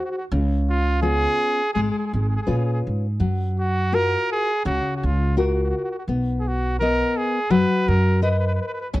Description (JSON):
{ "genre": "italian folk, Italian serenade", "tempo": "84 BPM", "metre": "4/4", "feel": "straight", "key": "unclear", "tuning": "A4 = 443 Hz", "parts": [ { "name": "clear trumpet", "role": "melody", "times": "0.0-8.9 s", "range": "E#4 to B4", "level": "-24 LUFS", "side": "right 1 dB", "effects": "none" }, { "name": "nylon-string guitar", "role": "accompaniment", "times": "0.0-9.0 s", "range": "C#3 to D#5", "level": "-24 LUFS", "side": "left 3 dB", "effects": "none" }, { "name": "upright bass", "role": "bass", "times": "0.3-9.0 s", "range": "G#1 to A#2", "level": "-22 LUFS", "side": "right 1 dB", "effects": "none" } ], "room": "small room ambience", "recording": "dry, close 1970s-style studio recording", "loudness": "-19 LUFS", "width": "side -17 dB against mid", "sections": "0.0-9.0 A section", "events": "none", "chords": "0.3 C#7; 3.2 F#maj7; 6.1 Bmaj7", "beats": "| 0.31 1.03 1.75 2.47 | 3.20 3.92 4.64 5.36 | 6.08 6.79 7.51 8.23 | 8.94" }